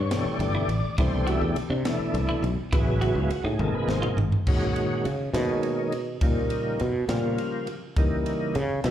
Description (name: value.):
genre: electric jazz fusion.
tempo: 69 BPM (dotted quarters).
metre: 6/8.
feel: straight.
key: Db mixolydian from 4.5 s.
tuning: A4 = 440 Hz.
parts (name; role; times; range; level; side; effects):
tonewheel organ; accompaniment; 0.0-8.9 s; Bb2 to E5; -27 LUFS; left 1 dB; slow rotary speaker, chorus vibrato, slapback echo.
clean electric guitar; stabs; 0.0-4.2 s; D4 to F#4; -34 LUFS; right 3 dB; lush chorus, slapback echo.
sustaining fretless electric bass; bass; 0.0-8.9 s; G1 to Db3; -26 LUFS; equal; none.
crisp fusion drum kit; drums; 0.1-8.9 s; crash cymbal, kick drum, ride cymbal, snare drum, toms; -29 LUFS; equal; none.
room: light reverb, studio reverb.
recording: live gig heard through the venue's PA, club reverb.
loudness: -23 LUFS.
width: side -10 dB against mid.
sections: 0.0-4.5 A section; 4.5-8.9 A section.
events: drum fill 3.6-4.5; fretless electric bass solo 4.5-8.9.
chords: 0.0 G69; 1.0 Cmaj7; 2.7 A69; 3.6 G#add9; 4.5 Db9sus4; 6.2 Eb9; 8.0 Eb7b9.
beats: 0.11 | 0.98 1.86 | 2.73 3.60 | 4.48 5.35 | 6.22 7.10 | 7.97 8.84.